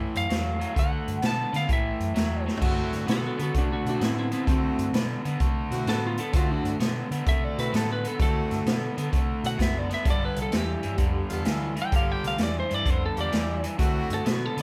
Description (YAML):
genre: electric blues shuffle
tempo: 129 BPM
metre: 4/4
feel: swing 67% on 8ths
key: D mixolydian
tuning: A4 = 440 Hz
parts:
  - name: crunchy overdriven guitar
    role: riff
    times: 0.0-14.6 s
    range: G2 to B3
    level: -33 LUFS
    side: equal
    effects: none
  - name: vintage muted fingered electric bass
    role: bass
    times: 0.0-14.6 s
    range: F#1 to D3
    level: -34 LUFS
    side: equal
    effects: none
  - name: lightly driven lead guitar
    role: melody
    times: 0.2-14.6 s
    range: C4 to A5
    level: -33 LUFS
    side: equal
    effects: none
  - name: swinging big-band drum kit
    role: drums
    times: 0.2-14.6 s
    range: crash cymbal, hi-hat, kick drum, snare drum, toms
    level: -29 LUFS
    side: equal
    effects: none
  - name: clear saxophone section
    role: stabs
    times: 2.6-14.4 s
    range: Bb3 to A4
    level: -38 LUFS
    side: equal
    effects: none
room: light reverb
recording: band playing live in one room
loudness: -26 LUFS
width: mono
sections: 0.0-2.6 A section; 2.6-14.6 B section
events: drum fill 2.4; lead electric guitar solo 2.6-14.6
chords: 0.0 A5; 0.8 D; 1.7 A5; 2.6 D9; 10.1 G9; 11.9 Gm7; 13.8 D9